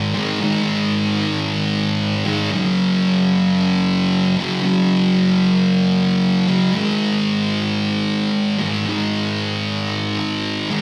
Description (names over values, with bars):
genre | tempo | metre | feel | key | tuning
rock | 114 BPM | 4/4 | straight | unclear | A4 = 440 Hz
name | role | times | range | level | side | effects
thick fuzz guitar | solo | 0.0-10.8 s | Gb2 to Ab3 | -18 LUFS | equal | distortion
room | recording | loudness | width
little or no reverb | live gig heard through the venue's PA, club reverb | -18 LUFS | mono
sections
0.0-10.8 A section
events
none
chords
0.0 Ab5; 2.5 Gb5; 6.8 Ab5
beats
| 0.41 0.94 1.47 2.00 | 2.53 3.06 3.58 4.11 | 4.64 5.17 5.70 6.23 | 6.75 7.28 7.81 8.34 | 8.87 9.39 9.92 10.45